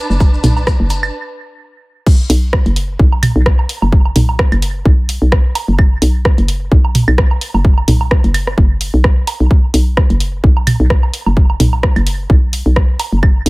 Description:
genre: minimal techno.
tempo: 129 BPM.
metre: 4/4.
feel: swing 56% on 16ths.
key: B minor.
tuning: A4 = 444 Hz.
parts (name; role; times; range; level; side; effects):
dark studio string section; texture; 0.0-1.1 s; D4 to A5; -25 LUFS; right 1 dB; sidechain pumping.
hollow knocking FM bass; bass; 0.1-13.5 s; F#1 to B1; -14 LUFS; equal; sidechain pumping.
maracas; percussion; 0.1-1.1 s; none; -29 LUFS; left 4 dB; dub echo.
electronic kick drum; drums; 0.2-13.3 s; none; -11 LUFS; equal; none.
electronic woodblock and toms; percussion; 0.2-13.3 s; none; -18 LUFS; right 2 dB; dub echo.
house drum kit; drums; 0.4-13.5 s; crash cymbal, hi-hat, rim click; -19 LUFS; equal; none.
room: little or no reverb.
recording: echo-heavy mix.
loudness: -10 LUFS.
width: side -23 dB against mid.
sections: 0.0-2.1 A section; 2.1-13.5 B section.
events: stop 1.1-2.1; drop 2.1-13.5.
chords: 0.0 Bm7.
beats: | 0.20 0.67 1.14 1.60 | 2.06 2.53 3.00 3.46 | 3.92 4.39 4.86 5.32 | 5.79 6.25 6.72 7.18 | 7.65 8.11 8.58 9.04 | 9.51 9.97 10.44 10.90 | 11.37 11.83 12.30 12.76 | 13.23.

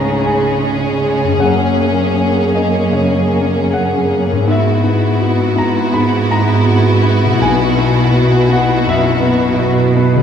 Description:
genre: cinematic.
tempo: 81 BPM.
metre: 4/4.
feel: rubato.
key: unclear.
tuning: A4 = 440 Hz.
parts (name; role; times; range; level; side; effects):
clear studio violin section; melody; 0.0-10.2 s; F#4 to G#4; -22 LUFS; left 2 dB; none.
clear studio violin section; second line; 0.0-10.2 s; C#4 to E4; -21 LUFS; left 2 dB; none.
clear concert grand piano; accompaniment; 0.0-10.2 s; B1 to B5; -17 LUFS; left 2 dB; none.
rich studio viola section; accompaniment; 0.0-10.2 s; G#3 to B3; -21 LUFS; right 3 dB; none.
concert harp; arpeggios; 0.0-10.2 s; F#2 to G#4; -20 LUFS; left 6 dB; none.
rich studio cello section; bass; 0.0-10.2 s; F#2 to C#3; -16 LUFS; right 4 dB; none.
room: wet recital hall reverb, RT60 1.3 s.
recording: dark, warm production.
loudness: -11 LUFS.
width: side -8 dB against mid.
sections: 0.0-10.2 A section.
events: none.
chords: 0.0 C#sus2; 1.4 F#add9; 4.5 Eadd9/G#; 7.4 Bsus4.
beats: 0.65 | 1.42 2.18 2.93 3.73 | 4.49 5.22 5.95 6.68 | 7.42 8.16 8.88 9.61.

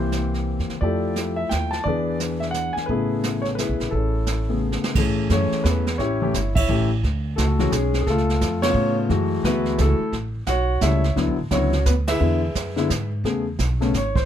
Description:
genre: jazz piano trio.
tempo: 174 BPM.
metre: 3/4.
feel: swing 62% on 8ths.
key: A major.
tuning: A4 = 440 Hz.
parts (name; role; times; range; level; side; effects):
warm concert grand piano; melody; 0.0-14.3 s; C#3 to A5; -22 LUFS; left 2 dB; none.
upright bass; bass; 0.0-14.3 s; G1 to A2; -24 LUFS; right 1 dB; none.
jazz brush drum kit; drums; 0.1-14.3 s; brushed snare drum, crash cymbal, hi-hat, kick drum, ride cymbal, snare drum; -27 LUFS; right 3 dB; none.
room: little or no reverb.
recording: close, detailed microphones.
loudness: -20 LUFS.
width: side -10 dB against mid.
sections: 0.0-5.0 A section; 5.0-13.2 B section; 13.2-14.3 C section.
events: drum fill 4.6-5.0; band accent 6.5, 8.6, 12.0; grand piano solo 13.2-14.3.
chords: 0.0 C7; 0.8 Fmaj9; 1.9 E7; 2.9 Amaj9; 5.0 Amaj7; 6.0 A7; 7.0 Dmaj7#11; 8.1 C#7b13; 9.1 F#m9; 10.1 A; 11.2 D69; 12.2 E7; 13.2 Amaj9.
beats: 0.13 0.48 | 0.82 1.17 1.51 | 1.86 2.20 2.54 | 2.89 3.23 3.58 | 3.92 4.27 4.62 | 4.96 5.30 5.65 | 5.99 6.34 6.68 | 7.03 7.37 7.72 | 8.06 8.41 8.75 | 9.10 9.44 9.79 | 10.13 10.47 10.82 | 11.16 11.51 11.85 | 12.20 12.54 12.89 | 13.23 13.58 13.93.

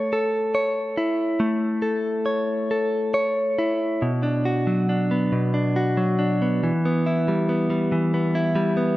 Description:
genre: pop.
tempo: 46 BPM (dotted quarters).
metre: 6/8.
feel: straight.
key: B minor.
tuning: A4 = 442 Hz.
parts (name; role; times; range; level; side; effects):
direct-recorded clean electric guitar; solo; 0.0-9.0 s; B2 to C#5; -20 LUFS; equal; none.
room: moderate lush hall reverb, RT60 2.6 s.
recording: rough home demo mix.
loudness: -20 LUFS.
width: side -16 dB against mid.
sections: 0.0-4.0 A section; 4.0-9.0 B section.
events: none.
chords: 0.0 A; 4.0 Bm; 6.6 Em.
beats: 0.12 | 1.41 2.71 | 4.03 5.33 | 6.63 7.92.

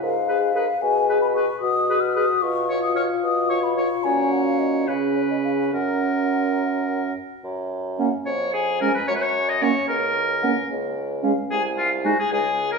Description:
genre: quick classical-period movement for wind quintet.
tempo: 74 BPM (dotted quarters).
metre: 6/8.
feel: rubato.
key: F# major.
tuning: A4 = 440 Hz.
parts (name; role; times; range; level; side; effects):
mellow hollow concert flute; melody; 0.0-12.2 s; C#5 to E#6; -25 LUFS; left 6 dB; none.
warm French horn; accompaniment; 0.0-12.1 s; G#3 to A#4; -26 LUFS; left 3 dB; none.
mellow bassoon; bass; 0.0-12.8 s; B#1 to C#3; -27 LUFS; right 1 dB; none.
clear oboe; second line; 0.3-12.8 s; E#4 to D#5; -25 LUFS; left 2 dB; none.
dark clarinet; accompaniment; 0.3-12.1 s; C#4 to G#4; -26 LUFS; right 6 dB; none.
room: wet recital hall reverb, RT60 1.5 s.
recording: studio ambience.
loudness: -20 LUFS.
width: side -4 dB against mid.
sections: 0.0-7.4 A section; 7.4-12.8 B section.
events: none.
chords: 0.0 C#7 (rootless); 0.8 G#m/B; 2.4 C#7/B; 4.0 F#/A#; 4.9 C#5; 5.7 F#; 7.4 N.C.; 8.3 C#/E#; 9.1 F#; 10.7 N.C.; 11.5 G#/B#.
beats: 0.02 | 0.82 1.61 | 2.42 3.23 | 4.04 4.87 | 5.73 6.58 | 7.44 8.27 | 9.08 9.89 | 10.70 11.50 | 12.31.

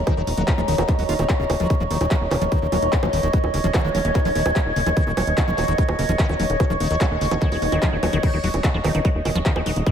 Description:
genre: psychedelic trance.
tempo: 147 BPM.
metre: 4/4.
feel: straight.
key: Eb minor.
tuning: A4 = 441 Hz.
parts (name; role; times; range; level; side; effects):
overtone-sweeping drone; sustained chords; 0.0-9.9 s; Db5 to Eb5; -26 LUFS; left 1 dB; chorus, built-in reverb, sidechain pumping.
plucky analog bass; bass; 0.0-9.8 s; Eb1; -24 LUFS; equal; tube saturation.
warbly tape-like pad; texture; 0.0-9.9 s; Eb5 to Db6; -28 LUFS; right 1 dB; chorus, built-in reverb, phaser, sidechain pumping.
liquid acid bass; riff; 0.1-9.9 s; Db3 to F4; -27 LUFS; moving between left 3 dB and right 3 dB; chorus, auto-pan, sidechain pumping, tape echo.
drum and bass drum kit; drums; 0.1-9.9 s; bongos, crash cymbal, handclaps, hi-hat; -28 LUFS; right 2 dB; overdrive.
electronic kick drum; drums; 0.1-9.9 s; none; -20 LUFS; equal; none.
resonant blip pluck; second line; 0.6-9.4 s; Eb3 to Eb4; -36 LUFS; right 3 dB; none.
swell; sound effects; 7.6-8.2 s; none; -32 LUFS; right 5 dB; none.
room: moderate lush hall reverb, RT60 2.0 s.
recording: dreamy mix soaked in reverb.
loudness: -18 LUFS.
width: side -8 dB against mid.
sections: 0.0-9.9 A section.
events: swell 7.6-8.2.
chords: 0.0 Eb5.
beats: | 0.07 0.48 0.89 1.29 | 1.70 2.11 2.52 2.93 | 3.33 3.74 4.15 4.56 | 4.97 5.38 5.78 6.19 | 6.60 7.01 7.42 7.82 | 8.23 8.64 9.05 9.46 | 9.87.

